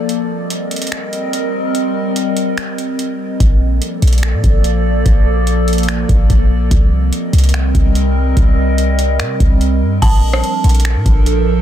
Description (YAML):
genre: hip hop, atmospheric cloud-rap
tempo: 145 BPM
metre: 4/4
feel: half-time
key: Bb major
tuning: A4 = 440 Hz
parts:
  - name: warbly tape-like pad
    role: sustained chords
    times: 0.0-11.6 s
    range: F3 to Eb5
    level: -18 LUFS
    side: equal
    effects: chorus, built-in reverb, phaser, sidechain pumping
  - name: booming analog drum machine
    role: drums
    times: 0.1-11.4 s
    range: crash cymbal, finger snaps, hi-hat, kick drum, rim click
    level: -15 LUFS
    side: equal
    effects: soft clipping on snare
  - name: clean 808-style bass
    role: bass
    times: 3.4-11.6 s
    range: Bb1 to C3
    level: -14 LUFS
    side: equal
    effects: none
  - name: dark detuned synth bell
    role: melody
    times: 10.0-10.8 s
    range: A5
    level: -21 LUFS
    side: right 3 dB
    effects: chorus, low-pass filter, ping-pong delay
room: little or no reverb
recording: dense, heavily limited modern master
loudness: -12 LUFS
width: side -11 dB against mid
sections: 0.0-10.0 A section; 10.0-11.6 B section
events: break 0.0-3.4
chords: 0.1 Cm7; 3.4 Bbmaj7; 6.7 Cm7; 10.0 Bbmaj7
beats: | 0.09 0.51 0.92 1.33 | 1.75 2.16 2.57 2.99 | 3.40 3.81 4.23 4.64 | 5.06 5.47 5.88 6.30 | 6.71 7.12 7.54 7.95 | 8.37 8.78 9.19 9.61 | 10.02 10.44 10.85 11.26